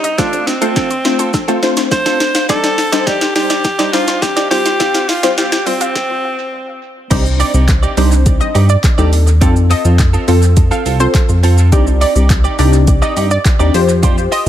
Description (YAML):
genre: dance-pop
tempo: 104 BPM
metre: 4/4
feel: straight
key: C dorian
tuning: A4 = 442 Hz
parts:
  - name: edgy alto saxophone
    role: melody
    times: 0.0-6.8 s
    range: C4 to C5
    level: -17 LUFS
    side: equal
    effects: tape echo
  - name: wide unison pluck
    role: arpeggios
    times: 0.0-5.9 s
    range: C4 to G6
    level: -25 LUFS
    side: left 1 dB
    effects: none
  - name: direct-recorded clean electric guitar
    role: riff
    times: 0.0-14.5 s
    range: C4 to D5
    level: -22 LUFS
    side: right 4 dB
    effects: analog chorus, tape echo
  - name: smooth R&B drum kit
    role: drums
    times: 0.0-14.5 s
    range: crash cymbal, handclaps, hi-hat, kick drum, shaker, snare drum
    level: -15 LUFS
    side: equal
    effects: overdrive
  - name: punchy chord stab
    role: accompaniment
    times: 0.2-14.5 s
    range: G3 to D5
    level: -18 LUFS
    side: left 2 dB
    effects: chorus, sidechain pumping, tape echo
  - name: chorused synth bass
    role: bass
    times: 7.1-14.5 s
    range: C2 to G2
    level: -11 LUFS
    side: equal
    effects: sidechain pumping
  - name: analog pluck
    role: melody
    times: 7.4-14.4 s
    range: C5 to F5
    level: -21 LUFS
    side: right 1 dB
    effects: chorus, sidechain pumping, tape echo
room: light reverb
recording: echo-heavy mix, high-pass filter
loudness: -10 LUFS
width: side -11 dB against mid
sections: 0.0-7.1 A section; 7.1-14.5 B section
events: build-up 0.0-7.1; drum fill 0.0-6.0; stop 6.0-7.1; drop 7.1-14.5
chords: 0.2 F; 2.5 Cmadd9; 4.5 Fsus2; 6.0 N.C.; 7.1 Cmadd9; 9.4 F; 11.7 Cmadd9; 13.7 Fsus2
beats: | 0.18 0.76 1.34 1.92 | 2.49 3.07 3.65 4.22 | 4.80 5.38 5.95 6.53 | 7.11 7.68 8.26 8.84 | 9.42 9.99 10.57 11.15 | 11.72 12.30 12.88 13.45 | 14.03